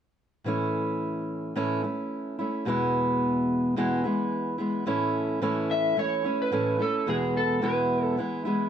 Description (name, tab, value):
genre	pop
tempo	109 BPM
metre	4/4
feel	swing 55% on 16ths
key	A major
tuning	A4 = 440 Hz
part	fingerpicked steel-string acoustic guitar	accompaniment	0.4-8.7 s	E2 to E4	-25 LUFS	equal	none
part	electric slide guitar	melody	5.7-8.1 s	G#4 to E5	-27 LUFS	right 1 dB	none
room	moderate small room ambience, RT60 0.5 s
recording	none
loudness	-24 LUFS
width	side -8 dB against mid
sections	0.5-4.9 A section; 4.9-8.7 B section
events	none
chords	0.5 A; 2.7 E; 4.9 A; 7.1 E